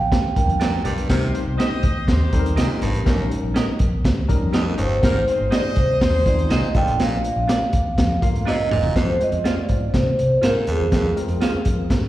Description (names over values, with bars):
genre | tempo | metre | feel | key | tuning
uptempo 1960s-style soul | 122 BPM | 4/4 | straight | F dorian | A4 = 440 Hz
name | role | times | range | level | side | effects
vibraphone with soft mallets | melody | 0.0-0.8, 4.8-11.1 s | Ab4 to G5 | -23 LUFS | right 1 dB | slapback echo, tape echo
vintage muted fingered electric bass | bass | 0.0-12.1 s | E1 to C3 | -23 LUFS | equal | none
crunchy breakbeat drum kit | drums | 0.1-12.0 s | hi-hat, kick drum, snare drum, toms | -21 LUFS | equal | none
tine electric piano | accompaniment | 0.4-11.9 s | D3 to Bb5 | -28 LUFS | left 3 dB | medium stereo tremolo, slapback echo
raspy baritone saxophone | riff | 0.6-11.1 s | Eb2 to C3 | -30 LUFS | right 2 dB | slapback echo
semi-hollow electric guitar | stabs | 0.6-11.5 s | Db4 to F5 | -32 LUFS | right 7 dB | slapback echo
clear horn section | second line | 1.1-6.7 s | Eb4 to Eb5 | -31 LUFS | left 1 dB | slapback echo
room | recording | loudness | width
light reverb, small room ambience | live gig heard through the venue's PA, recital hall reverb | -17 LUFS | side -14 dB against mid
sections
0.0-9.0 A section; 9.0-12.1 B section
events
tine electric piano fill 8.2-9.0; drum fill 8.5-9.0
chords
0.0 Gm; 1.1 Cm; 3.1 Eb7/Bb; 5.0 Ab; 6.7 Bb; 9.0 Fm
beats
0.12 0.61 | 1.10 1.59 2.08 2.57 | 3.06 3.56 4.05 4.54 | 5.03 5.52 6.01 6.50 | 6.99 7.49 7.98 8.47 | 8.96 9.45 9.94 10.43 | 10.92 11.41 11.91